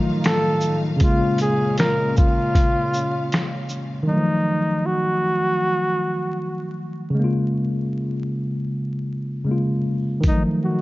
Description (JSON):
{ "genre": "lo-fi hip hop", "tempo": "78 BPM", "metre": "4/4", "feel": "swing 61% on 16ths", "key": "Bb minor", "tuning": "A4 = 438 Hz", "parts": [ { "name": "mellow tine electric piano", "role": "accompaniment", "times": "0.0-10.8 s", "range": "Db3 to F4", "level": "-22 LUFS", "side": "equal", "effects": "slow stereo tremolo" }, { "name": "rich studio string section", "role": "sustained chords", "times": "0.0-4.1 s", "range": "A2 to F5", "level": "-30 LUFS", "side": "equal", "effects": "none" }, { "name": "breathy flugelhorn", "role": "melody", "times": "0.2-10.8 s", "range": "Eb4 to Bb4", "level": "-23 LUFS", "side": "equal", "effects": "none" }, { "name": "lo-fi sampler-style drum kit", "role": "drums", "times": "0.2-3.9, 10.2-10.5 s", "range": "hi-hat, kick drum, shaker, snare drum", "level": "-20 LUFS", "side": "equal", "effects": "overdrive" } ], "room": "light reverb", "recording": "vinyl crackle, nothing above 7.5 kHz", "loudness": "-19 LUFS", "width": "side -18 dB against mid", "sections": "0.0-4.1 A section; 4.1-10.8 B section", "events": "none", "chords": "0.0 F7b9; 1.0 Bbm7; 4.1 F7b9; 7.2 Bbm7; 10.2 F7b9" }